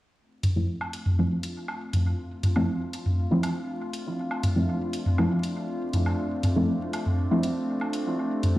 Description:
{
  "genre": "dub techno",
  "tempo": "120 BPM",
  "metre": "4/4",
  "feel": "straight",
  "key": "D minor",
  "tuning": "A4 = 440 Hz",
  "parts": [
    { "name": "warbly tape-like pad", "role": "sustained chords", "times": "0.7-8.6 s", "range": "A3 to G4", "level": "-31 LUFS", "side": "equal", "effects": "chorus, built-in reverb" },
    { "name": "electronic hi-hat", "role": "drums", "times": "0.4-8.5 s", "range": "none", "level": "-40 LUFS", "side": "left 1 dB", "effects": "none" },
    { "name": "electronic toms and woodblock", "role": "percussion", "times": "0.4-8.5 s", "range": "none", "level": "-26 LUFS", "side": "equal", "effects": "none" },
    { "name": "deep mellow chord stab", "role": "stabs", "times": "0.6-8.6 s", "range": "F3 to E4", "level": "-27 LUFS", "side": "equal", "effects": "chorus, phaser, dub echo" }
  ],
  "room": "moderate spring reverb, RT60 1.4 s, digital ambience",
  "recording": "played on a big sound system in a bare room, stone room reverb, vinyl crackle",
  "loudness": "-24 LUFS",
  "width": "side -16 dB against mid",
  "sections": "0.2-8.6 A section",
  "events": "filter sweep on synth stab 0.2-8.6",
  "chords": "0.2 Dm7"
}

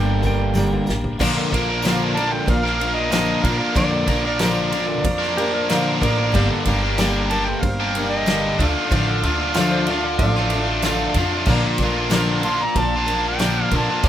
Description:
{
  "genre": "folk rock and heartland rock",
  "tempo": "93 BPM",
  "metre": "4/4",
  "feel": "straight",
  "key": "unclear",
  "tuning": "A4 = 445 Hz",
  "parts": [
    { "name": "pedal steel guitar", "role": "second line", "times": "0.0-1.2, 5.4-10.8 s", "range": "F4 to G5", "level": "-28 LUFS", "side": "right 4 dB", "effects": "none" },
    { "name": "clear upright piano", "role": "accompaniment", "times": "0.0-14.1 s", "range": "F4 to D6", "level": "-34 LUFS", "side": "right 3 dB", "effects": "none" },
    { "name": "picked steel-string acoustic guitar", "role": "accompaniment", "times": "0.0-14.1 s", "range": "G2 to Bb4", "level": "-24 LUFS", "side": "left 3 dB", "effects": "none" },
    { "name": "tonewheel organ", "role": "sustained chords", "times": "0.0-14.1 s", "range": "D3 to F5", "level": "-35 LUFS", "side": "equal", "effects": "none" },
    { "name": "biting overdriven guitar", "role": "riff", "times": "0.0-14.1 s", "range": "G2 to Bb4", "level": "-22 LUFS", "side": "equal", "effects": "none" },
    { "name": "upright bass", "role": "bass", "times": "0.0-14.1 s", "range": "G1 to Bb2", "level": "-25 LUFS", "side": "right 1 dB", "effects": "none" },
    { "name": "natural country drum kit", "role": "drums", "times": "0.2-14.1 s", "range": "crash cymbal, kick drum, ride cymbal, snare drum, toms", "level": "-26 LUFS", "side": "equal", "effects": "none" },
    { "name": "tambourine", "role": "percussion", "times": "0.2-13.5 s", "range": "none", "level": "-37 LUFS", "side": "right 5 dB", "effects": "none" },
    { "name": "overdriven harmonica", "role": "melody", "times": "2.2-14.1 s", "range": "G4 to C6", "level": "-25 LUFS", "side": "right 1 dB", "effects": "none" }
  ],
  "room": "little or no reverb",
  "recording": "rough home demo mix",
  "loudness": "-17 LUFS",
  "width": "side -11 dB against mid",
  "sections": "0.0-1.2 A section; 1.2-14.1 B section",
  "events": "drum fill 0.0-1.2; pedal steel guitar solo 0.0-1.2",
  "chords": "0.0 Gm; 1.2 Bb; 6.3 Gm; 8.6 Dm; 11.5 Bb"
}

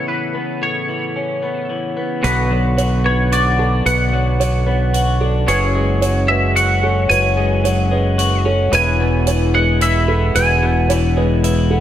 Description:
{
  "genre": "post-rock",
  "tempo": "111 BPM",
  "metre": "3/4",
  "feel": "straight",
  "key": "unclear",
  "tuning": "A4 = 440 Hz",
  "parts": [
    { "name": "twangy electric guitar", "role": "melody", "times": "0.0-11.1 s", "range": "B4 to G#5", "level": "-20 LUFS", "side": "equal", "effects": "analog chorus, analog delay" },
    { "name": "pedal steel guitar", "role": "sustained chords", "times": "0.0-11.8 s", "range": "C#3 to C#5", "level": "-27 LUFS", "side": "equal", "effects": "wide subtle chorus" },
    { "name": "twelve-string electric guitar", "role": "arpeggios", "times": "0.0-11.8 s", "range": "E2 to F#4", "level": "-20 LUFS", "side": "left 2 dB", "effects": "analog delay" },
    { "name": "felt-muted upright piano", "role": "arpeggios", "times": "2.2-11.8 s", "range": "A4 to C#5", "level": "-25 LUFS", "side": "right 5 dB", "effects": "analog delay" },
    { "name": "growling fingered electric bass", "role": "bass", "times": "2.2-11.8 s", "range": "E1 to B1", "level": "-17 LUFS", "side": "equal", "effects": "overdrive" },
    { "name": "hi-hat", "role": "drums", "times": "2.2-11.6 s", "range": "none", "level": "-31 LUFS", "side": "right 5 dB", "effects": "none" }
  ],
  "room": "light reverb, small room ambience",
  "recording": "none",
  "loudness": "-14 LUFS",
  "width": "side -11 dB against mid",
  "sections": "0.0-2.2 A section; 2.2-11.8 B section",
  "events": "none",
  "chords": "0.0 Aadd9; 2.2 Bm; 5.5 F#sus2; 8.7 E"
}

